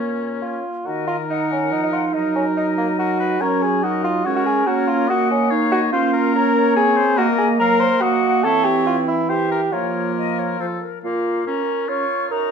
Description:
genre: quick classical-period movement for wind quintet.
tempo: 142 BPM.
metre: 3/4.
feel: straight.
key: Eb minor, Bb minor from 5.9 s.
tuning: A4 = 440 Hz.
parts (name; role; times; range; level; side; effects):
silver concert flute; melody; 0.0-12.5 s; Bb4 to Db6; -27 LUFS; left 10 dB; none.
warm oboe; second line; 0.0-12.5 s; Bb3 to Eb5; -25 LUFS; left 5 dB; none.
dark clarinet; accompaniment; 0.0-12.5 s; Gb3 to Db5; -23 LUFS; right 6 dB; none.
mellow French horn; accompaniment; 0.0-12.0 s; Eb3 to Db4; -25 LUFS; left 1 dB; none.
warm bassoon; bass; 0.0-12.5 s; Gb2 to C5; -21 LUFS; right 1 dB; none.
room: moderate recital hall reverb, RT60 1.4 s.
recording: none.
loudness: -17 LUFS.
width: side -6 dB against mid.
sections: 0.9-11.0 A section; 11.0-12.5 B section.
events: none.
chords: 0.0 Bbm; 0.9 Ebm; 2.1 Ebm/Gb; 3.4 Gb; 4.7 Gb/Bb; 5.9 Bbm; 7.2 Cm7b5; 8.4 Em6; 9.7 Bbm/F; 11.0 Bbm.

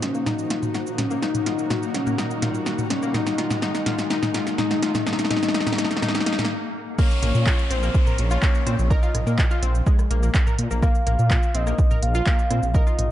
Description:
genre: melodic techno.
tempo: 125 BPM.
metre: 4/4.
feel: straight.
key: Bb minor.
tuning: A4 = 439 Hz.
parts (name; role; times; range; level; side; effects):
soft octave-layered synth lead; melody; 0.0-13.1 s; Db4 to F5; -28 LUFS; left 2 dB; chorus, sidechain pumping, tape echo.
lush unison pad; sustained chords; 0.0-6.5 s; Bb2 to Gb4; -34 LUFS; right 1 dB; chorus, phaser, sidechain pumping.
deep house drum kit; drums; 0.0-13.1 s; crash cymbal, handclaps, hi-hat, rim click, shaker, snare drum, toms; -26 LUFS; equal; none.
riser and downlifter; sound effects; 0.0-10.8 s; none; -33 LUFS; equal; none.
granular cloud pad; texture; 0.0-6.5 s; Bb3 to Bb5; -34 LUFS; left 1 dB; built-in reverb, sidechain pumping.
analog pluck; arpeggios; 0.1-13.0 s; Ab3 to Bb5; -30 LUFS; left 4 dB; chorus, vintage 12-bit sampler grit, sidechain pumping, digital delay.
electronic kick drum; drums; 7.0-12.8 s; none; -20 LUFS; equal; none.
swelling detuned saw bass; bass; 7.2-13.1 s; Bb1 to Bb2; -21 LUFS; equal; sidechain pumping.
room: moderate lush hall reverb, RT60 1.6 s.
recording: dark, warm production, nothing above 11.0 kHz.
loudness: -19 LUFS.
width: side -12 dB against mid.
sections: 0.0-7.0 A section; 7.0-13.1 B section.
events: build-up 0.0-7.0; drum fill 0.0-6.5; riser 0.0-6.5; filter sweep on synth pluck 0.0-7.0; filter sweep on soft synth lead 0.0-7.0; stop 6.5-7.0; drop 7.0-13.1.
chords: 0.0 Ebm/Bb; 7.0 Bbmadd9.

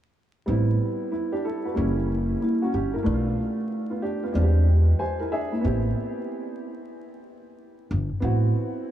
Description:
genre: hip hop.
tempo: 93 BPM.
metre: 4/4.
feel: swing 63% on 16ths.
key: A dorian.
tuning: A4 = 439 Hz.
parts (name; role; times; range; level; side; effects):
warm upright piano; accompaniment; 0.5-8.9 s; G3 to G#5; -26 LUFS; equal; none.
upright bass; bass; 0.5-8.5 s; F#1 to E2; -22 LUFS; equal; none.
room: moderate huge ambient reverb, RT60 4.5 s.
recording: dreamy mix soaked in reverb, vinyl crackle.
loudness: -22 LUFS.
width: side -11 dB against mid.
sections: 0.5-8.9 A section.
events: upright piano fill 4.7-5.6.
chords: 0.5 Am9; 1.8 F#7b9; 3.1 Bm7b5; 4.3 E7alt; 5.6 Am9.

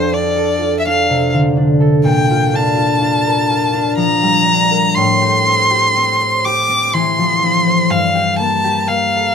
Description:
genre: classical, impressionist duo for violin and harp.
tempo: 62 BPM.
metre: 3/4.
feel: rubato.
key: unclear.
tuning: A4 = 440 Hz.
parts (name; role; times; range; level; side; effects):
rich violin; melody; 0.0-9.3 s; C5 to D6; -14 LUFS; equal; none.
concert harp; accompaniment; 0.0-9.3 s; F2 to C5; -15 LUFS; left 1 dB; none.
room: moderate stone room reverb, RT60 1.1 s.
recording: minimal, uncompressed stereo recording.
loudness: -12 LUFS.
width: side -7 dB against mid.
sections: 0.0-9.3 A section.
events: none.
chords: 0.0 Dm7/F; 2.0 Bbmaj7; 4.9 Am7; 7.9 Gm9.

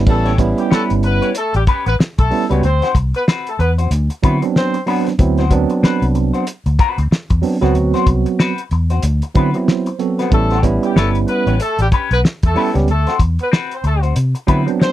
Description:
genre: funk.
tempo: 94 BPM.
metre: 4/4.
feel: swing 60% on 16ths.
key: unclear.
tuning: A4 = 440 Hz.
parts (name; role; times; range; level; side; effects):
tine electric piano; stabs; 0.0-14.9 s; F#3 to C5; -17 LUFS; right 5 dB; medium stereo tremolo.
vintage muted fingered electric bass; bass; 0.0-14.7 s; G1 to D3; -16 LUFS; equal; none.
clear horn section; second line; 0.1-4.8, 10.3-14.9 s; G3 to C5; -19 LUFS; left 1 dB; none.
semi-hollow electric guitar; accompaniment; 0.1-14.8 s; C4 to C#5; -22 LUFS; left 7 dB; wah.
cloth-damped thuddy drum kit; drums; 0.1-14.9 s; crash cymbal, hi-hat, kick drum, snare drum; -15 LUFS; equal; none.
room: little or no reverb.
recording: dry, close 1970s-style studio recording.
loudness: -13 LUFS.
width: side -13 dB against mid.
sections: 0.1-14.9 A section.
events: tine electric piano fill 9.4-10.3.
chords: 0.1 A9; 2.6 D13; 10.3 A9; 12.9 D13.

